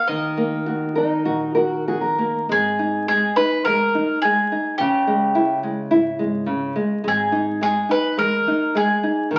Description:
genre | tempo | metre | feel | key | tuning
fado-style ballad | 105 BPM | 4/4 | rubato | G# harmonic minor | A4 = 440 Hz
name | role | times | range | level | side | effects
bowl-back mandolin | melody | 0.0-9.4 s | G4 to Eb5 | -22 LUFS | equal | none
nylon-string guitar | accompaniment | 0.0-9.4 s | C#3 to Bb4 | -24 LUFS | equal | none
upright bass | bass | 0.1-9.4 s | G#1 to Eb2 | -40 LUFS | equal | none
fingerpicked twelve-string acoustic guitar | second line | 1.0-2.5 s | Eb4 to Bb4 | -26 LUFS | equal | none
room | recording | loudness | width
wet large studio reverb, RT60 0.8 s | very old 78 rpm record, vinyl crackle | -20 LUFS | mono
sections
0.0-2.5 A section; 2.5-9.4 B section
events
none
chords
0.1 Ebm; 2.5 G#sus2; 4.8 C#m; 7.0 G#sus2

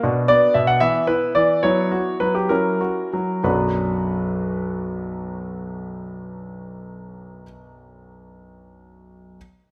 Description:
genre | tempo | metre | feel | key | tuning
classical-period piano sonatina | 62-78 BPM (dotted quarters) | 6/8 | rubato | B minor | A4 = 440 Hz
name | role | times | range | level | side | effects
warm concert grand piano | solo | 0.0-9.4 s | B1 to F#5 | -21 LUFS | equal | none
room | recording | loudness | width
moderate recital hall reverb, RT60 1.8 s | none | -20 LUFS | mono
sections
0.0-3.4 A section; 3.4-7.2 B section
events
slowing down 0.0-3.4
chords
0.0 Bm; 0.8 E5; 1.6 F#7sus4; 2.5 F#7; 3.4 Bm

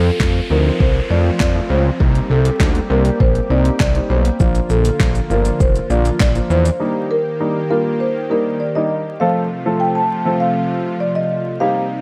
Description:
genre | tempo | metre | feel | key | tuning
dance-pop | 100 BPM | 4/4 | straight | unclear | A4 = 440 Hz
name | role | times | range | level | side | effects
marimba with soft mallets | melody | 0.0-12.0 s | A4 to A5 | -23 LUFS | equal | analog delay
soft supersaw | sustained chords | 0.0-12.0 s | C3 to G4 | -27 LUFS | equal | sidechain pumping
fat analog bass | bass | 0.0-6.7 s | F1 to F2 | -19 LUFS | equal | sidechain pumping
downlifter | sound effects | 0.0-4.4 s | none | -34 LUFS | equal | none
dark baby grand piano | accompaniment | 0.2-11.9 s | F3 to A4 | -25 LUFS | equal | sidechain pumping
deep house drum kit | drums | 0.2-6.8 s | handclaps, hi-hat, kick drum, shaker, snare drum | -19 LUFS | equal | overdrive
room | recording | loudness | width
light reverb, digital ambience | dark, warm production, vinyl crackle | -17 LUFS | mono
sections
0.0-9.2 A section; 9.2-12.0 B section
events
break 6.8-9.2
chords
0.0 F; 2.0 Cm7; 4.4 Bb; 6.8 Ebmaj7; 9.2 F

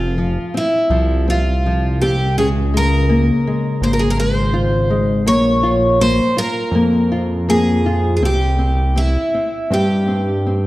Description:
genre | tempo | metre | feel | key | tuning
fado-style ballad | 81 BPM | 4/4 | rubato | F harmonic minor | A4 = 439 Hz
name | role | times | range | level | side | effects
picked twelve-string acoustic guitar | melody | 0.0-10.7 s | E4 to Db5 | -19 LUFS | equal | none
nylon-string guitar | accompaniment | 0.0-10.7 s | Db3 to F4 | -20 LUFS | left 2 dB | none
fat analog bass | bass | 0.0-10.7 s | F1 to G2 | -18 LUFS | equal | none
room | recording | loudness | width
wet recital hall reverb, RT60 1.7 s | dark, warm production | -14 LUFS | side -17 dB against mid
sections
0.0-10.7 A section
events
none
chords
0.0 F5; 2.4 Db6; 5.3 Bbm; 8.2 C

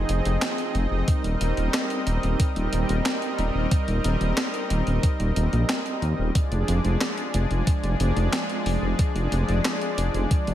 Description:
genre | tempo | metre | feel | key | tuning
synthwave | 91 BPM | 4/4 | straight | C minor | A4 = 440 Hz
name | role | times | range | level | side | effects
warm analog pad | sustained chords | 0.0-10.5 s | F3 to Eb5 | -27 LUFS | equal | chorus, tremolo, sidechain pumping
dark detuned saw bass | bass | 0.0-10.5 s | Eb1 to Eb2 | -23 LUFS | equal | sidechain pumping
clean 12-bit digital drum machine | drums | 0.1-10.5 s | handclaps, hi-hat, snare drum | -28 LUFS | equal | gated reverb
electronic kick drum | drums | 1.1-10.4 s | none | -22 LUFS | equal | none
room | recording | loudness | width
light reverb, digital ambience | none | -22 LUFS | side -12 dB against mid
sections
0.0-10.5 A section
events
none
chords
0.0 Fm7; 1.1 Cm7/Eb; 6.4 Ddim/F

